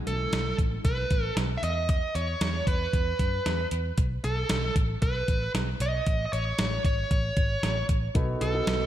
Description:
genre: 1980s-style pop.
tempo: 115 BPM.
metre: 4/4.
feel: straight.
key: unclear.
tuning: A4 = 445 Hz.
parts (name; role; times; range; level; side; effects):
dark smooth lead guitar; melody; 0.1-8.9 s; A4 to E5; -30 LUFS; right 1 dB; overdrive, digital delay.
vintage muted picked electric bass; bass; 0.1-8.9 s; G#1 to F#2; -30 LUFS; equal; none.
clean 12-bit digital drum machine; drums; 0.1-8.8 s; hi-hat, kick drum, snare drum; -28 LUFS; equal; none.
dark concert grand piano; accompaniment; 8.1-8.9 s; B2 to B4; -32 LUFS; equal; none.
granular cloud pad; sustained chords; 8.2-8.9 s; F#3 to B3; -42 LUFS; equal; built-in reverb.
room: light reverb.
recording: none.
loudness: -25 LUFS.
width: side -12 dB against mid.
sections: 0.0-8.9 A section.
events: none.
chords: 0.0 Asus2; 1.6 E5; 4.0 Asus2; 6.1 Amaj7; 8.2 B7.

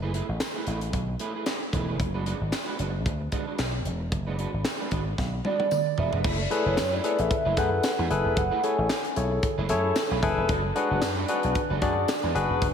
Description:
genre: early-eighties boogie funk.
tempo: 113 BPM.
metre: 4/4.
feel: swing 56% on 16ths.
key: F# minor.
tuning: A4 = 440 Hz.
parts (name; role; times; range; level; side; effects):
electric guitar at the edge of break-up; riff; 0.0-12.7 s; G#3 to C#5; -34 LUFS; right 4 dB; ensemble chorus, slapback echo.
vintage slap bass; bass; 0.0-12.7 s; E1 to F#2; -29 LUFS; equal; none.
tight funk drum kit; drums; 0.1-12.7 s; crash cymbal, handclaps, hi-hat, kick drum, snare drum, toms; -30 LUFS; equal; none.
tambourine; percussion; 0.4-12.2 s; none; -47 LUFS; left 6 dB; none.
hollow clarinet-like synth lead; melody; 5.5-9.2 s; C#5 to G#5; -28 LUFS; right 2 dB; chorus, phaser, slapback echo.
barky tine electric piano; accompaniment; 6.5-12.7 s; D4 to D5; -26 LUFS; left 3 dB; none.
room: wet lush hall reverb, RT60 1.9 s, studio reverb.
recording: big arena sound.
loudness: -24 LUFS.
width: side -7 dB against mid.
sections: 0.0-6.2 A section; 6.2-12.7 B section.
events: drum fill 5.2-6.2.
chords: 0.0 F#m11 (rootless); 2.0 E9 (rootless); 6.2 F#m11; 10.5 E9 (rootless).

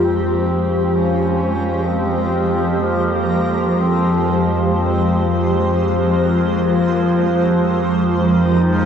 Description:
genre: dark ambient drone.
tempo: free time.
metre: none.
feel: none.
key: F minor.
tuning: A4 = 439 Hz.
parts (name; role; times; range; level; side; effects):
warm duduk; melody; 0.0-8.9 s; Bb3 to Eb4; -27 LUFS; right 1 dB; diffuse ambient delay.
granular cloud pad; sustained chords; 0.0-8.9 s; F3 to C5; -19 LUFS; right 2 dB; built-in reverb.
overtone-sweeping drone; drone; 0.0-8.9 s; F2 to F3; -17 LUFS; left 1 dB; chorus, built-in reverb.
backwards swelling texture; texture; 0.0-8.9 s; Bb3 to Bb4; -33 LUFS; equal; built-in reverb.
room: wet huge ambient reverb, RT60 8.4 s.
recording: worn, warbling old tape, cassette tape, warbly pitch drift, faint mains hum.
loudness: -15 LUFS.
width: side -8 dB against mid.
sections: 0.0-8.9 A section.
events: fade-in on synth texture 0.0-8.9.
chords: 0.0 Fmadd9.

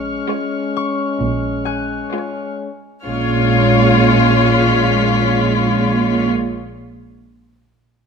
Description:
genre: cinematic, suspense film score.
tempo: 65 BPM.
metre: 4/4.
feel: straight.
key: Bb phrygian.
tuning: A4 = 442 Hz.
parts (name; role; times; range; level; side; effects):
mellow French horn section; sustained chords; 0.0-6.3 s; Ab3 to Db4; -23 LUFS; left 3 dB; none.
muted chamber cello section; bass; 0.0-6.3 s; Bb2; -20 LUFS; right 4 dB; none.
muted studio double bass section; bass; 0.0-6.3 s; Bb1; -20 LUFS; right 5 dB; none.
muted chamber violin section; texture; 0.0-6.2 s; Db6 to Cb7; -28 LUFS; equal; none.
muted studio violin section; melody; 0.3-6.3 s; Db5; -22 LUFS; left 4 dB; none.
muted chamber violin section; second line; 0.3-6.3 s; F4; -19 LUFS; left 7 dB; none.
muted chamber viola section; accompaniment; 0.3-6.3 s; Ab3; -22 LUFS; right 3 dB; none.
concert harp; texture; 0.8-4.7 s; Ab5 to Gb6; -27 LUFS; left 5 dB; none.
room: light reverb.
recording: close, detailed microphones.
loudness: -14 LUFS.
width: side -6 dB against mid.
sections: 0.0-3.1 A section; 3.1-6.7 B section.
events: none.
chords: 0.0 Db/Bb.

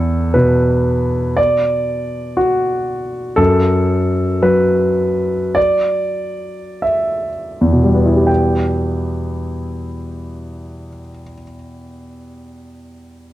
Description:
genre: neoclassical minimalist piano.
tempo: 40-60 BPM (dotted quarters).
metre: 6/8.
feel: rubato.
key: E minor.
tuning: A4 = 440 Hz.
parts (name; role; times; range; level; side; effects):
warm concert grand piano; solo; 0.0-13.3 s; E2 to G5; -15 LUFS; equal; none.
room: studio reverb.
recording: dry, close 1970s-style studio recording.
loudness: -14 LUFS.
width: side -14 dB against mid.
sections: 0.0-8.3 A section; 8.3-13.3 B section.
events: slowing down 2.4-8.3.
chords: 0.0 Esus2; 3.4 N.C.; 8.3 Em.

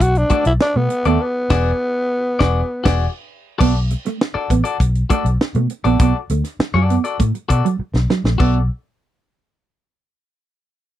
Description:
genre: funk.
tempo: 100 BPM.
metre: 4/4.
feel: straight.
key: B dorian.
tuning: A4 = 440 Hz.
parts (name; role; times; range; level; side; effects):
growling tenor saxophone; melody; 0.0-3.0 s; A3 to F#4; -19 LUFS; equal; none.
vintage muted fingered electric bass; bass; 0.0-8.7 s; E1 to B2; -17 LUFS; equal; none.
tight funk drum kit; drums; 0.0-8.5 s; crash cymbal, hi-hat, kick drum, snare drum; -19 LUFS; equal; none.
clean electric guitar; accompaniment; 0.3-8.6 s; F#4 to D5; -22 LUFS; left 6 dB; none.
mellow electric guitar; riff; 0.3-8.6 s; F#3 to B3; -20 LUFS; right 7 dB; analog chorus.
room: little or no reverb.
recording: dry, close 1970s-style studio recording.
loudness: -15 LUFS.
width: side -13 dB against mid.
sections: 0.0-3.6 A section; 3.6-8.4 B section; 8.4-10.8 C section.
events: band accent 1.2-3.6; break 3.0-3.6; drum fill 7.8-8.4.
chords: 0.0 Bm7; 1.2 E9; 3.6 Bm7.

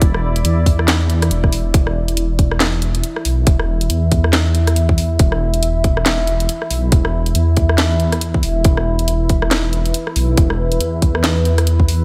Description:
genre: deep dubstep.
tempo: 139 BPM.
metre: 4/4.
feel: swing 59% on 16ths, half-time.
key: unclear.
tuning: A4 = 439 Hz.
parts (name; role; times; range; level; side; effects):
deep dark ambient pad; sustained chords; 0.0-12.0 s; E4 to E5; -26 LUFS; equal; chorus, built-in reverb.
dark detuned saw bass; bass; 0.0-12.0 s; E1 to E2; -19 LUFS; equal; none.
electronic kick drum; drums; 0.0-11.9 s; none; -17 LUFS; equal; small room reverb.
garage drum kit; drums; 0.0-12.0 s; handclaps, hi-hat, rim click, snare drum; -22 LUFS; equal; small room reverb.
room: light reverb.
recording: none.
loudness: -16 LUFS.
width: mono.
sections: 0.0-12.0 A section.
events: none.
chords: 0.0 E5.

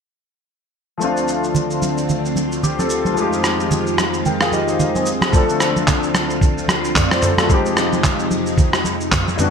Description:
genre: amapiano.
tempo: 111 BPM.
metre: 4/4.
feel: swing 58% on 16ths.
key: D phrygian.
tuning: A4 = 441 Hz.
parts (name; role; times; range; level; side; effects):
warm concert grand piano; accompaniment; 1.0-9.5 s; E3 to G5; -20 LUFS; left 2 dB; analog chorus.
string machine, violins; sustained chords; 1.0-9.5 s; D2 to F4; -23 LUFS; right 1 dB; phaser, ensemble chorus, sidechain pumping.
lo-fi sampler-style drum kit; drums; 1.0-9.5 s; handclaps, kick drum, rim click, shaker, toms; -19 LUFS; equal; gated reverb.
congas; percussion; 1.5-9.4 s; none; -24 LUFS; right 3 dB; none.
room: moderate plate reverb, RT60 1.8 s, digital ambience.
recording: bright 1980s-style digital production.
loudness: -15 LUFS.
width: side -6 dB against mid.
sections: 1.0-5.3 A section; 5.3-9.5 B section.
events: none.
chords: 1.0 Dm7; 3.2 Fm7; 5.1 Dm7; 7.5 Fm7.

